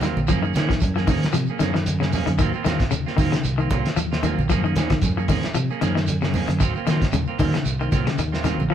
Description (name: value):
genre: afrobeat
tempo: 114 BPM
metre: 4/4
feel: swing 55% on 16ths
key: Eb dorian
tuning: A4 = 439 Hz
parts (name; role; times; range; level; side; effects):
- electric guitar at the edge of break-up; arpeggios; 0.0-8.7 s; Db3 to F3; -25 LUFS; left 5 dB; tremolo
- electric guitar at the edge of break-up; stabs; 0.0-8.7 s; F3 to Ab4; -28 LUFS; right 7 dB; spring reverb
- cloth-damped thuddy drum kit; drums; 0.0-8.6 s; hi-hat, kick drum, snare drum; -25 LUFS; equal; none
- congas; percussion; 0.0-8.7 s; none; -26 LUFS; right 2 dB; none
- shekere; percussion; 0.0-8.7 s; none; -34 LUFS; right 6 dB; none
- fingered electric bass; bass; 0.2-8.7 s; Bb1 to Eb3; -26 LUFS; equal; none
room: moderate studio ambience, RT60 0.5 s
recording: band playing live in one room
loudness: -19 LUFS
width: side -10 dB against mid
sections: 0.0-8.7 A section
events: none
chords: 0.3 Gbmaj9; 2.4 Ebm69; 4.5 Gbmaj9; 6.6 Ebm69